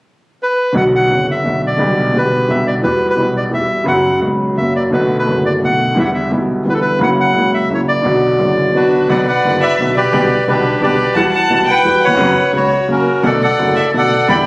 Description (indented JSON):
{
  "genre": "tango",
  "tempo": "173 BPM",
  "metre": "3/4",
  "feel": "rubato",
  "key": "B minor",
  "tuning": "A4 = 444 Hz",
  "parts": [
    { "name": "bandoneon", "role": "melody", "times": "0.4-14.5 s", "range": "C#4 to B5", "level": "-14 LUFS", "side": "equal", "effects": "none" },
    { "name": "clear concert grand piano", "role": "accompaniment", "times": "0.7-14.4 s", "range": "F#1 to G4", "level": "-14 LUFS", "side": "equal", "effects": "none" },
    { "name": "upright bass", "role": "bass", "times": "0.8-14.4 s", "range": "F#1 to E2", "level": "-27 LUFS", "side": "equal", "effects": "none" },
    { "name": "dark violin", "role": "second line", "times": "8.7-14.4 s", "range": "A#4 to B5", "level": "-21 LUFS", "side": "left 1 dB", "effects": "none" }
  ],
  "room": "moderate studio reverb, RT60 0.7 s",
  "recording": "recorded on a phone in the room, club reverb, compression",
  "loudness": "-11 LUFS",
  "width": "side -24 dB against mid",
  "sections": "0.8-9.1 A section; 9.1-14.5 A section",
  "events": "none",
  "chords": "0.0 N.C.; 0.8 Bm; 1.8 G/B; 2.8 Emadd9; 3.9 F#sus4; 4.6 F#; 4.9 Bm7; 6.0 Em7; 7.0 F#7; 8.0 Bm; 10.1 G/B; 11.2 Emadd9; 12.2 F#sus4; 12.9 F#; 13.2 Bm7"
}